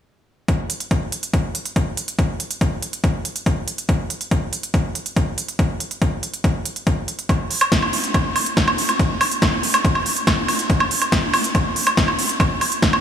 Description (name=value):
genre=psychedelic trance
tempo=141 BPM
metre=4/4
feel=straight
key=none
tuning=none
part: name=big-room dance drum kit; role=drums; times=0.5-13.0 s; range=hi-hat, snare drum, woodblock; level=-20 LUFS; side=right 1 dB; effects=overdrive
part: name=electronic kick drum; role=drums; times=0.5-12.9 s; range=none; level=-20 LUFS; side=left 1 dB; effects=overdrive
room=moderate huge ambient reverb, RT60 4.8 s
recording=dreamy mix soaked in reverb, small room ambience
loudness=-18 LUFS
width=side -9 dB against mid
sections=0.5-13.0 A section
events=none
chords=none